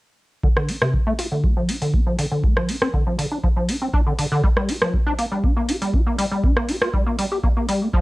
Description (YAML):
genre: acid house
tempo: 120 BPM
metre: 4/4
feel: straight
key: D minor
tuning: A4 = 445 Hz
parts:
  - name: acid bass, square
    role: riff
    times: 0.4-8.0 s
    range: C3 to G4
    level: -22 LUFS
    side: equal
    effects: tube saturation, ensemble chorus, cassette tape, tape echo
  - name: electronic kick drum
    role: drums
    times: 0.4-8.0 s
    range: none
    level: -20 LUFS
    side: equal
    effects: cassette tape
  - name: electro analog drum machine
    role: drums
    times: 0.6-7.8 s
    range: hi-hat, rim click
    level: -25 LUFS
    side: equal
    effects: cassette tape
room: light reverb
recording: home recording on cassette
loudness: -18 LUFS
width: side -20 dB against mid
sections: 0.4-8.0 A section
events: filter sweep on acid bass 0.4-8.0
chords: none